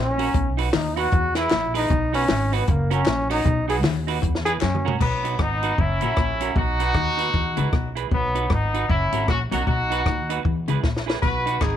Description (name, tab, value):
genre	ska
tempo	154 BPM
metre	4/4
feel	swing 60% on 8ths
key	B major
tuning	A4 = 437 Hz
part	clear trombone	melody	0.0-5.0 s	A#3 to G#4	-24 LUFS	left 1 dB	none
part	electric guitar at the edge of break-up	riff	0.0-11.8 s	F#2 to F#3	-30 LUFS	left 9 dB	none
part	upright bass	bass	0.0-11.8 s	F#1 to F#2	-26 LUFS	equal	none
part	semi-hollow electric guitar	accompaniment	0.2-11.6 s	C#4 to B4	-30 LUFS	right 11 dB	none
part	compact cocktail drum kit	drums	0.2-11.7 s	crash cymbal, hi-hat, kick drum, rim click, snare drum, splash cymbal, toms	-25 LUFS	equal	none
part	group handclap	percussion	0.7-4.7, 11.6-11.7 s	none	-38 LUFS	left 11 dB	slapback echo
part	bright horn section	melody	5.0-11.8 s	F#3 to B4	-24 LUFS	left 1 dB	none
room	light reverb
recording	1960s-style stereo with parts hard left and right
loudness	-20 LUFS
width	side -10 dB against mid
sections	0.0-5.0 A section; 5.0-11.8 B section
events	trombone solo 0.0-5.0; drum fill 4.6-5.0, 10.8-11.2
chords	0.3 B; 1.1 E; 1.9 B; 2.7 F#; 3.5 B; 4.2 E; 4.6 F#; 5.0 B; 5.8 F#; 6.6 B; 7.3 E; 8.1 B; 8.9 F#; 9.7 B; 10.4 E; 11.2 B